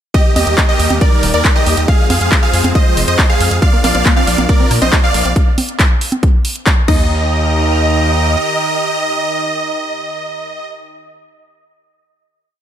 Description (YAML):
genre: uplifting trance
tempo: 138 BPM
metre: 4/4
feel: straight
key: Eb major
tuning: A4 = 440 Hz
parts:
  - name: supersaw chords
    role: melody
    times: 0.1-10.7 s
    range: G4 to F5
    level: -17 LUFS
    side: right 2 dB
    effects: sidechain pumping, dub echo
  - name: wide unison pluck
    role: second line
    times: 0.1-10.7 s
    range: D5 to F5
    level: -23 LUFS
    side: equal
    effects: sidechain pumping, dub echo
  - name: lush unison pad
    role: sustained chords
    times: 0.1-10.7 s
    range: Eb3 to Bb5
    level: -22 LUFS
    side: equal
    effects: chorus, sidechain pumping
  - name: electronic kick drum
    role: drums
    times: 0.1-7.0 s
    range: none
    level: -12 LUFS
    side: equal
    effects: overdrive
  - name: house drum kit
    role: drums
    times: 0.1-7.0 s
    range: congas, crash cymbal, handclaps, hi-hat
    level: -18 LUFS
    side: equal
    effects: overdrive
  - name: gritty driven synth bass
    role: bass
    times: 0.4-8.4 s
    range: Eb1 to Bb2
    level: -16 LUFS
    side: equal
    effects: sidechain pumping
  - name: wide unison pluck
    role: arpeggios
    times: 3.6-7.3 s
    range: Bb3 to F4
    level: -22 LUFS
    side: left 1 dB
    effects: phaser, sidechain pumping, dub echo
room: little or no reverb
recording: none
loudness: -11 LUFS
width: side -10 dB against mid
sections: 0.1-7.1 drop; 7.1-10.6 final hit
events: drop 0.1-7.1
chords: 0.1 Eb; 1.9 Fm; 3.6 Bb; 5.4 N.C.; 6.9 Eb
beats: | 0.14 0.58 1.01 1.45 | 1.88 2.32 2.75 3.19 | 3.62 4.06 4.49 4.93 | 5.36 5.80 6.23 6.67 | 7.10 7.54 7.97 8.40 | 8.84 9.27 9.71 10.14